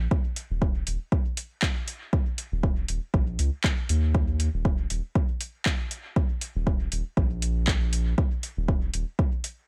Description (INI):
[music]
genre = dub techno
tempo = 119 BPM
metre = 4/4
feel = swing 55% on 16ths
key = unclear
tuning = A4 = 439 Hz
[part]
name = soft dub sub bass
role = bass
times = 0.0-9.0 s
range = Eb1 to Eb2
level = -29 LUFS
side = equal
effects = sidechain pumping
[part]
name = electronic kick drum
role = drums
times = 0.1-9.3 s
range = none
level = -27 LUFS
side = equal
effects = overdrive
[part]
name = soft vintage rhythm box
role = drums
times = 0.4-9.6 s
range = handclaps, hi-hat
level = -33 LUFS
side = equal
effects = overdrive, dub echo
[sound]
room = digital ambience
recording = none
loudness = -27 LUFS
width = mono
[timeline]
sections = 0.0-9.7 A section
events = none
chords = none